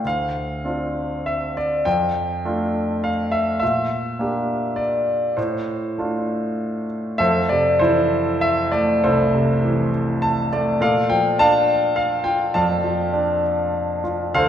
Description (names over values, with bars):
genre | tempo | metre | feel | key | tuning
classical, lyrical solo piano | 101 BPM | 3/4 | rubato | F major | A4 = 445 Hz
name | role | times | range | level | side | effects
clear concert grand piano | solo | 0.0-14.5 s | C2 to A5 | -18 LUFS | equal | none
room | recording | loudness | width
wet recital hall reverb, RT60 1.5 s | recorded in a church or concert hall | -18 LUFS | side -9 dB against mid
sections
0.0-7.2 A section; 7.2-14.5 B section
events
grand piano fill 9.9-10.8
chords
0.0 Dm7; 1.9 F6; 3.6 Bb6; 5.4 F6/A; 7.2 Fmaj7; 10.8 Bbmaj7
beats
| 0.04 0.66 1.26 | 1.86 2.45 3.04 | 3.62 4.20 4.78 | 5.37 5.97 6.58 | 7.20 7.81 8.42 | 9.03 9.63 10.22 | 10.81 11.38 11.96 | 12.55 13.14 13.74 | 14.35